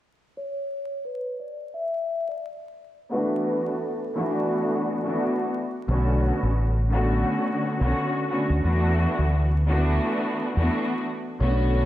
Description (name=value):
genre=hip hop, boom-bap hip-hop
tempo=87 BPM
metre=4/4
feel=swing 58% on 16ths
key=unclear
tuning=A4 = 442 Hz
part: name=vibraphone with soft mallets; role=melody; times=0.4-5.2, 11.4-11.9 s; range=A4 to E5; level=-30 LUFS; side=left 1 dB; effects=high-pass filter, low-pass filter, analog delay
part: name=muted studio string section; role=accompaniment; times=3.1-11.9 s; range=D3 to F#4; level=-24 LUFS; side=equal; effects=high-pass filter, low-pass filter
part: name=deep dub fingered electric bass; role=bass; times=5.9-11.8 s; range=A1 to E2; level=-22 LUFS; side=equal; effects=none
room=moderate lush hall reverb, RT60 1.6 s, small room ambience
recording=dreamy mix soaked in reverb, vinyl crackle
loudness=-22 LUFS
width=side -13 dB against mid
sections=0.4-11.4 A section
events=filter sweep 0.4-11.4; stop 10.7-11.4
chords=0.4 N.C.; 3.1 E9sus4; 5.9 Bm9; 8.6 E9sus4